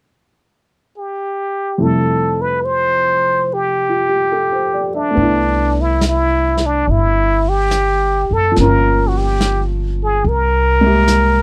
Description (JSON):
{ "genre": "jazz ballad", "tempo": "71 BPM", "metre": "4/4", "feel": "swing 69% on 8ths", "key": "C major", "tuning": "A4 = 440 Hz", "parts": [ { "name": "trumpet with plunger mute", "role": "melody", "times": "1.0-11.4 s", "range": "D4 to C5", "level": "-18 LUFS", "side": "equal", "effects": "none" }, { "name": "warm baby grand piano", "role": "accompaniment", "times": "1.8-11.4 s", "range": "F2 to E5", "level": "-22 LUFS", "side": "equal", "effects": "none" }, { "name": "upright bass", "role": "bass", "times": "5.2-11.4 s", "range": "F#1 to C2", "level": "-20 LUFS", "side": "equal", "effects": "none" }, { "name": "vintage brush drum kit", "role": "drums", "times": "5.2-11.4 s", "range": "brushed snare drum, hi-hat, snare drum", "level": "-28 LUFS", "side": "equal", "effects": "none" } ], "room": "little or no reverb", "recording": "none", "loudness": "-16 LUFS", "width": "mono", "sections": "0.0-1.8 A section; 1.8-5.2 B section; 5.2-11.4 C section", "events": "none", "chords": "0.0 N.C.; 1.8 Fmaj9; 5.2 Cmaj13; 8.6 Gm7b5; 10.2 C7b13", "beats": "0.09 0.93 | 1.79 2.63 3.47 4.32 | 5.17 6.02 6.86 7.71 | 8.55 9.39 10.23 11.07" }